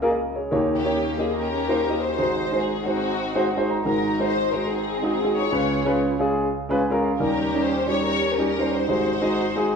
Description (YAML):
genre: gospel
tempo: 143 BPM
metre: 4/4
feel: swing 62% on 8ths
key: unclear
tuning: A4 = 442 Hz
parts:
  - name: warm concert grand piano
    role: accompaniment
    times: 0.0-9.8 s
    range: Ab1 to Bb5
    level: -22 LUFS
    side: equal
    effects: none
  - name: warm studio string section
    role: melody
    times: 0.8-9.8 s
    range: Bb3 to Db5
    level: -25 LUFS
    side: left 1 dB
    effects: none
room: wet large studio reverb, RT60 1.2 s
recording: band playing live in one room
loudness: -20 LUFS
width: side -6 dB against mid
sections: 0.0-9.8 A section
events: grand piano fill 3.2-3.9, 6.6-7.2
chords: 0.0 Bbm7/Db; 0.5 Eb7; 2.2 Ab7; 5.5 Db7; 7.2 Eb7; 8.9 Ab7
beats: 0.10 | 0.51 0.93 1.35 1.76 | 2.18 2.60 3.02 3.44 | 3.85 4.27 4.69 5.11 | 5.53 5.95 6.37 6.79 | 7.21 7.63 8.05 8.47 | 8.89 9.31 9.73